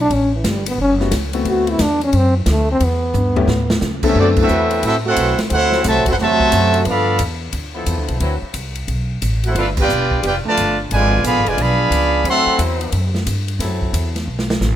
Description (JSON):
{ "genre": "jazz, big band swing", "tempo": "178 BPM", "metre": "4/4", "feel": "swing 65% on 8ths", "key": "unclear", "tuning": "A4 = 440 Hz", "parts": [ { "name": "mellow trombone", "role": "melody", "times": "0.0-3.8 s", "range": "E3 to F#4", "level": "-18 LUFS", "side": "equal", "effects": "none" }, { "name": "upright bass", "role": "bass", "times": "0.0-14.8 s", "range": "E1 to C#3", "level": "-20 LUFS", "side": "equal", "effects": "none" }, { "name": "swinging big-band drum kit", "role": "drums", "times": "0.1-14.7 s", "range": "crash cymbal, hi-hat, kick drum, ride cymbal, snare drum, toms", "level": "-24 LUFS", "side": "equal", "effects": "none" }, { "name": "warm concert grand piano", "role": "accompaniment", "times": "1.0-4.5 s", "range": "D3 to A4", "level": "-19 LUFS", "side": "left 5 dB", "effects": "none" }, { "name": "bright trumpet section", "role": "melody", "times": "4.1-7.2, 9.5-12.6 s", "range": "C4 to C6", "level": "-17 LUFS", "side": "equal", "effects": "none" }, { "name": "clear trombone section", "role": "second line", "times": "4.1-7.2, 9.4-12.6 s", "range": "C3 to G4", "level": "-21 LUFS", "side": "right 3 dB", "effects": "none" }, { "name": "bright trombone section", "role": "sustained chords", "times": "4.5-14.1 s", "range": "F3 to C5", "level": "-27 LUFS", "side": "left 2 dB", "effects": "none" } ], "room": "light reverb", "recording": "minimal, uncompressed stereo recording", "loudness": "-14 LUFS", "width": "side -11 dB against mid", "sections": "0.0-4.2 A section; 4.2-14.8 B section", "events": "trombone solo 0.0-4.2; drum fill 3.1-3.8, 14.3-14.6; band accent 4.3, 9.7", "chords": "0.1 A13; 1.5 D13; 2.8 Em; 3.5 A7; 4.2 D13; 6.9 G13; 8.2 D13; 9.6 G13; 10.9 G#dim7; 12.3 D9; 13.6 F#m7b5" }